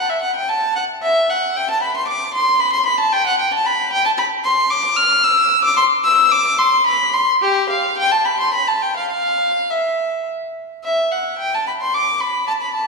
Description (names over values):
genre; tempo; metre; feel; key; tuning
classical, baroque-style suite movement for unaccompanied violin; 112 BPM; 3/4; rubato; G major; A4 = 440 Hz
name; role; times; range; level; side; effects
warm violin; solo; 0.0-12.9 s; G4 to F6; -15 LUFS; left 1 dB; none
room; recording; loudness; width
wet concert hall reverb, RT60 2.4 s; recorded in a church or concert hall, studio reverb; -15 LUFS; side -3 dB against mid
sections
0.0-10.8 A section; 10.8-12.9 A section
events
none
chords
none